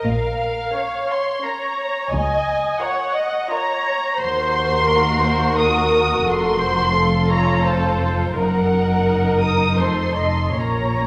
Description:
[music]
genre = classical, slow romantic movement for string orchestra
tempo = 87 BPM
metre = 3/4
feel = rubato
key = Bb minor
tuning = A4 = 440 Hz
[part]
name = muted studio violin section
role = melody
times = 0.0-11.1 s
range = F5 to Eb6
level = -25 LUFS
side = equal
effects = none
[part]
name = muted studio viola section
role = accompaniment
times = 0.0-11.1 s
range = A4 to Eb5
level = -25 LUFS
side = equal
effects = none
[part]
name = muted studio double bass section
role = bass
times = 0.0-11.1 s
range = F1 to Eb2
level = -27 LUFS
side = equal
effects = none
[part]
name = muted studio cello section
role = bass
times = 0.1-11.1 s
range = Db2 to Bb2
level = -26 LUFS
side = equal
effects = none
[part]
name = muted studio violin section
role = second line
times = 0.7-11.1 s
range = Db4 to Bb4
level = -26 LUFS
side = equal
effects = none
[sound]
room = wet scoring stage reverb, RT60 1.7 s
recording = none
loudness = -19 LUFS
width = mono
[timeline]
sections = 0.0-11.1 A section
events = none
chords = 0.1 Bbm; 2.1 Bbm/Db; 4.2 Cm7b5/Eb; 6.3 F; 8.3 Ebm/Gb; 9.8 F7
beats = | 0.06 0.75 1.44 | 2.12 2.81 3.51 | 4.20 4.88 5.57 | 6.26 6.95 7.65 | 8.35 9.05 9.79 | 10.57

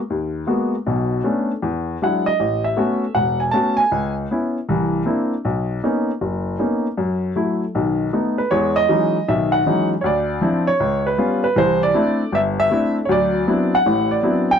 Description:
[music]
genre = solo jazz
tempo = 157 BPM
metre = 4/4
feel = swing 65% on 8ths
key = B major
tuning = A4 = 440 Hz
[part]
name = clear upright piano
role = solo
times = 0.1-14.6 s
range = E1 to A5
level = -17 LUFS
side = equal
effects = none
[sound]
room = little or no reverb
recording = dry, close 1970s-style studio recording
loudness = -17 LUFS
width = side -7 dB against mid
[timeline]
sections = 0.0-8.5 A section; 8.5-14.6 B section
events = none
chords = 0.0 G#m9; 0.9 Bm9; 1.6 E9; 2.4 A69; 3.9 C#m7; 4.7 C9; 5.5 Bmaj9; 7.0 F#m7; 7.8 B7; 8.5 Emaj13; 10.0 Dm9; 10.8 C#7#11; 11.6 C69; 13.1 D13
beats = 0.10 0.48 | 0.86 1.25 1.63 2.01 | 2.39 2.78 3.16 3.54 | 3.92 4.31 4.69 5.07 | 5.45 5.84 6.22 6.60 | 6.99 7.37 7.75 8.13 | 8.52 8.90 9.28 9.66 | 10.04 10.43 10.81 11.19 | 11.57 11.95 12.34 12.72 | 13.10 13.48 13.86 14.24

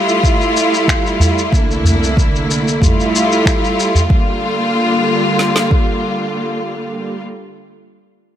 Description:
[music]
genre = organic downtempo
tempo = 93 BPM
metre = 4/4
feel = straight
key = G dorian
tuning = A4 = 440 Hz
[part]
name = clear symphonic string section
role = sustained chords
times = 0.0-7.2 s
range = C2 to F4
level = -15 LUFS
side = equal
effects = sidechain pumping
[part]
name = electronic shaker and finger snaps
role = drums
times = 0.1-4.1 s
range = none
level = -22 LUFS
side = left 2 dB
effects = studio reverb
[part]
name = deep house drum kit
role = drums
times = 0.2-5.9 s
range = kick drum, snare drum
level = -15 LUFS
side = equal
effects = studio reverb
[part]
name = udu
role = percussion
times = 1.2-4.1 s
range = none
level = -14 LUFS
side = equal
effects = none
[sound]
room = light reverb, small room ambience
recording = none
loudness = -12 LUFS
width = side -10 dB against mid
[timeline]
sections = 0.0-4.1 A section; 4.1-6.7 B section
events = none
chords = 0.0 Fmaj9; 1.5 C13; 2.8 Fmaj9; 4.1 Gm7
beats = 0.23 0.88 | 1.52 2.17 2.81 3.46 | 4.10 4.75 5.39 6.04

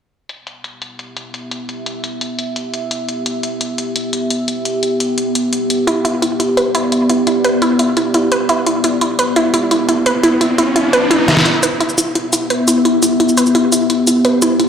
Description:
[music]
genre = dark technical drum and bass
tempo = 172 BPM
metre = 4/4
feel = straight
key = E minor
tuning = A4 = 440 Hz
[part]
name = deep dark ambient pad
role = sustained chords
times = 1.4-14.7 s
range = B3 to E5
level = -17 LUFS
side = left 1 dB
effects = chorus, built-in reverb
[part]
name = dubstep drum kit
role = drums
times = 0.3-14.7 s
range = cabasa, hi-hat, snare drum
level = -20 LUFS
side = left 1 dB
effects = low-pass filter on hats, low-pass filter on snare, low-pass filter on perc, low-pass filter on room
[part]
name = wide unison pluck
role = arpeggios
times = 5.9-14.7 s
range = E4 to B4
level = -15 LUFS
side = right 1 dB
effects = cassette tape, tape echo
[part]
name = riser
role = sound effects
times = 9.5-11.5 s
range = none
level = -20 LUFS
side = equal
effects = none
[sound]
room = moderate plate reverb, RT60 2.1 s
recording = played on a big sound system in a bare room, large studio reverb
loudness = -13 LUFS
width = side -7 dB against mid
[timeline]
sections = 0.3-11.5 A section; 11.5-14.7 B section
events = riser 9.5-11.5; drum fill 11.3; build-up 11.5-14.7; filter sweep on synth arpeggio sound 11.5-14.7; filter sweep 11.5-14.7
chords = 0.3 Em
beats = | 0.29 0.64 0.99 1.34 | 1.69 2.04 2.39 2.73 | 3.08 3.43 3.78 4.13 | 4.48 4.83 5.18 5.53 | 5.88 6.22 6.57 6.92 | 7.27 7.62 7.97 8.32 | 8.67 9.01 9.36 9.71 | 10.06 10.41 10.76 11.11 | 11.46 11.80 12.15 12.50 | 12.85 13.20 13.55 13.90 | 14.25 14.60

